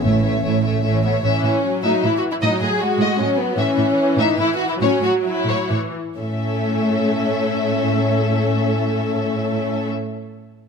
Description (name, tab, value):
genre	cinematic, heroic adventure film score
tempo	122-156 BPM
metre	3/4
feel	straight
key	A lydian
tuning	A4 = 441 Hz
part	warm symphonic violin section	melody	0.0-9.9 s	C#5 to E5	-26 LUFS	left 4 dB	none
part	dark clarinet	second line	0.0-0.8 s	A3	-27 LUFS	left 2 dB	none
part	dark symphonic violin section	second line	0.0-9.9 s	B3 to C#5	-22 LUFS	left 3 dB	none
part	warm studio viola section	accompaniment	0.0-9.9 s	E3 to A4	-23 LUFS	right 1 dB	none
part	mellow French horn section	sustained chords	0.0-1.0 s	E3 to C#4	-27 LUFS	left 6 dB	none
part	warm studio double bass section	bass	0.0-1.2 s	A1	-25 LUFS	right 7 dB	none
part	warm symphonic cello section	bass	0.0-9.9 s	A2	-23 LUFS	right 3 dB	none
part	timpani	percussion	0.1-0.6 s	A2	-26 LUFS	equal	none
room	light reverb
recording	close, detailed microphones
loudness	-17 LUFS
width	side -6 dB against mid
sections	0.0-1.2 A section; 1.2-6.2 B section; 6.2-9.1 C section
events	slowing down 3.0-6.2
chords	0.0 A; 2.4 B13/A (rootless); 3.6 C#m/A; 4.8 A